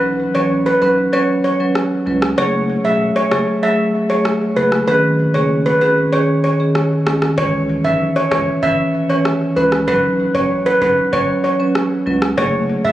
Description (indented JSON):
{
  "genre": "dancehall",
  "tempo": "96 BPM",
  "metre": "4/4",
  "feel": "straight",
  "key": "unclear",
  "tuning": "A4 = 440 Hz",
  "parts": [
    { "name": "steel pan", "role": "melody", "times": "0.0-12.9 s", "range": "B4 to E5", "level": "-17 LUFS", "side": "equal", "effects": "ping-pong delay" },
    { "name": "round analog bass", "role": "bass", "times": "0.0-12.9 s", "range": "E1 to C#2", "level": "-26 LUFS", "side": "equal", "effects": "none" },
    { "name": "marimba with medium mallets", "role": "accompaniment", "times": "0.3-12.9 s", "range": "D#3 to B4", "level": "-17 LUFS", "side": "right 1 dB", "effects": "none" },
    { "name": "booming analog drum machine", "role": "drums", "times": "1.8-12.9 s", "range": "kick drum, rim click", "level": "-23 LUFS", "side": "equal", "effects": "none" }
  ],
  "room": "light reverb, small room ambience",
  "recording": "recorded on a phone in the room, studio reverb",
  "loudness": "-14 LUFS",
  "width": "side -13 dB against mid",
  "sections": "0.0-12.9 A section",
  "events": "break 0.0-7.4",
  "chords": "0.0 Bsus2; 2.4 F#madd9; 4.9 G#sus4; 7.4 C#m7; 9.9 Bsus2; 12.4 F#madd9"
}